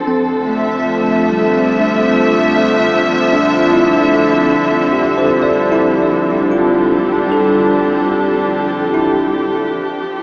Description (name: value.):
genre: ambient.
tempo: 74 BPM.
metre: 3/4.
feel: straight.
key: F major.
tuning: A4 = 436 Hz.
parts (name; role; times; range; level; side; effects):
warm studio string section; sustained chords; 0.0-10.2 s; F2 to E5; -13 LUFS; equal; none.
bell-like tine electric piano; arpeggios; 0.0-10.2 s; G3 to D5; -16 LUFS; equal; tape echo.
warm sub bass; bass; 9.8-10.2 s; none; barely audible; none; none.
room: wet spring reverb, RT60 3.0 s.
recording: echo-heavy mix, small speaker sound.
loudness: -11 LUFS.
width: side -30 dB against mid.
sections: 0.0-9.8 A section.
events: none.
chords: 0.0 Fmaj9.